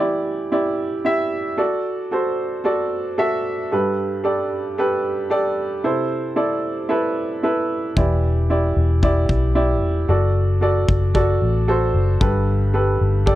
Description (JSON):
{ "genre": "piano-driven pop", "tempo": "113 BPM", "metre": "4/4", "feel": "straight", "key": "E minor", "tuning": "A4 = 440 Hz", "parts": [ { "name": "warm upright piano", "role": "accompaniment", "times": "0.0-13.4 s", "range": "G2 to E5", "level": "-20 LUFS", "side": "right 1 dB", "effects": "none" }, { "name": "vintage muted fingered electric bass", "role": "bass", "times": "8.0-13.4 s", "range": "E1 to B1", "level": "-18 LUFS", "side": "left 1 dB", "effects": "none" }, { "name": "kick drum", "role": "drums", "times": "8.0-13.4 s", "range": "none", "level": "-22 LUFS", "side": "left 1 dB", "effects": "none" } ], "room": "small room ambience", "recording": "dry, close 1970s-style studio recording", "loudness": "-18 LUFS", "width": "side -14 dB against mid", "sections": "0.0-13.4 A section", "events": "none", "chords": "0.0 Em7; 1.6 D/F#; 3.7 Gadd9; 5.8 C6; 8.0 Em7; 10.1 D/F#; 12.2 Gadd9" }